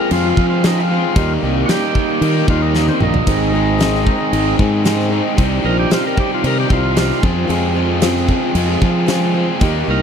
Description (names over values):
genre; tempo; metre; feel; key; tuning
classic rock; 114 BPM; 4/4; straight; unclear; A4 = 440 Hz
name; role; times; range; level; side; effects
overdriven tonewheel organ; melody; 0.0-10.0 s; C4 to Bb4; -21 LUFS; equal; slow rotary speaker
picked acoustic archtop guitar; accompaniment; 0.0-10.0 s; Ab2 to Ab4; -25 LUFS; left 11 dB; none
string machine, cellos; sustained chords; 0.0-10.0 s; Bb3 to Ab4; -28 LUFS; equal; none
overdriven electric guitar; riff; 0.0-10.0 s; Ab2 to F4; -22 LUFS; left 15 dB; none
overdriven electric guitar; riff; 0.0-10.0 s; F2 to Ab4; -21 LUFS; right 17 dB; none
fuzz fingered electric bass; bass; 0.1-10.0 s; Ab1 to F3; -18 LUFS; equal; overdrive
big rock drum kit; drums; 0.1-9.7 s; crash cymbal, kick drum, snare drum, toms; -20 LUFS; equal; none
room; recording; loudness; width
little or no reverb; dry, close 1970s-style studio recording; -13 LUFS; side -7 dB against mid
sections
0.0-10.0 A section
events
tonewheel organ solo 0.0-10.0; drum fill 2.7-3.3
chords
0.0 Fm; 1.2 Eb; 3.3 Ab; 5.4 Cm; 7.2 Fm